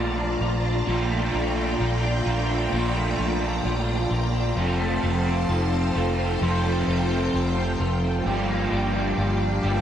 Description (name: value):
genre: dream pop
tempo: 65 BPM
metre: 4/4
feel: straight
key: Bb major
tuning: A4 = 441 Hz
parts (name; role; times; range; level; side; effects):
- crunchy overdriven guitar; accompaniment; 0.0-9.8 s; F2 to G4; -28 LUFS; right 4 dB; harmonic tremolo, analog chorus, dub echo
- string machine, violins; sustained chords; 0.0-9.8 s; F4 to Bb5; -28 LUFS; equal; ensemble chorus
- electric guitar at the edge of break-up; arpeggios; 0.0-9.8 s; F2 to G4; -27 LUFS; left 2 dB; ensemble chorus, dub echo
- vintage muted fingered electric bass; bass; 0.0-9.8 s; F1 to Bb1; -26 LUFS; equal; none
- vibraphone with soft mallets; texture; 0.0-9.8 s; D4 to F4; -38 LUFS; left 3 dB; none
room: moderate spring reverb, RT60 1.4 s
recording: echo-heavy mix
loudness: -21 LUFS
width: side -10 dB against mid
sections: 0.0-9.8 A section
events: none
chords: 0.0 Bbmaj7; 4.6 F; 8.3 Gm7